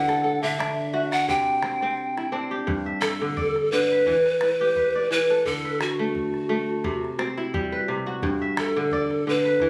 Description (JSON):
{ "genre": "west african traditional, West African string and xylophone music", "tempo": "86 BPM", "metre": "4/4", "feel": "swing 54% on 16ths", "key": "G major", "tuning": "A4 = 438 Hz", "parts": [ { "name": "breathy mellow pan flute", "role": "melody", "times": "0.0-9.7 s", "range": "F#4 to G5", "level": "-25 LUFS", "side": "equal", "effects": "none" }, { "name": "kora", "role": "arpeggios", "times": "0.0-9.7 s", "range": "G2 to E5", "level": "-29 LUFS", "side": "equal", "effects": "none" }, { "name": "calabash", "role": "percussion", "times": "0.1-9.7 s", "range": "none", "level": "-35 LUFS", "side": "equal", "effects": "none" } ], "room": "light reverb", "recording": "recorded on a phone in the room, studio reverb", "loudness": "-24 LUFS", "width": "mono", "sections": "0.0-2.7 A section; 2.7-9.7 B section", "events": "none", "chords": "0.0 D; 1.3 C; 2.7 G; 4.1 Em; 5.5 D; 6.8 C; 8.2 G" }